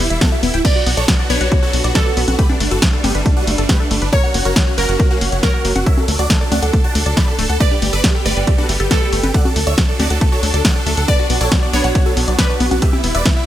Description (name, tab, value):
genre	uplifting trance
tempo	138 BPM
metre	4/4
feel	straight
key	B minor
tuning	A4 = 441 Hz
part	big supersaw lead	melody	0.0-13.4 s	A#3 to B5	-21 LUFS	right 1 dB	phaser, sidechain pumping, tape echo
part	clear studio string section	sustained chords	0.0-13.5 s	F#3 to E4	-27 LUFS	equal	sidechain pumping
part	wide unison pluck	arpeggios	0.0-13.4 s	A3 to G5	-24 LUFS	left 3 dB	sidechain pumping, tape echo
part	tight sequencer bass	bass	0.0-13.2 s	D1 to D2	-19 LUFS	equal	sidechain pumping
part	punchy analog drum machine	drums	0.0-13.3 s	congas, crash cymbal, hi-hat, ride cymbal, snare drum	-20 LUFS	equal	sidechain pumping on hats, sidechain pumping on perc, sidechain pumping on cymbals
part	electronic kick drum	drums	0.2-13.3 s	none	-16 LUFS	equal	none
part	glassy wavetable pluck	second line	0.6-13.5 s	A4 to D5	-23 LUFS	right 2 dB	chorus, tape echo
room	digital ambience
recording	none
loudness	-13 LUFS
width	side -12 dB against mid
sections	0.0-13.5 A section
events	none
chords	0.0 Em; 0.6 Bm; 2.4 Gadd9; 4.1 F#; 5.9 D; 7.6 Gadd9; 9.3 D; 11.1 Bm; 12.8 Em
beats	0.21 | 0.65 1.08 1.52 1.95 | 2.39 2.82 3.26 3.69 | 4.13 4.56 5.00 5.43 | 5.87 6.30 6.74 7.17 | 7.60 8.04 8.47 8.91 | 9.34 9.78 10.21 10.65 | 11.08 11.52 11.95 12.39 | 12.82 13.26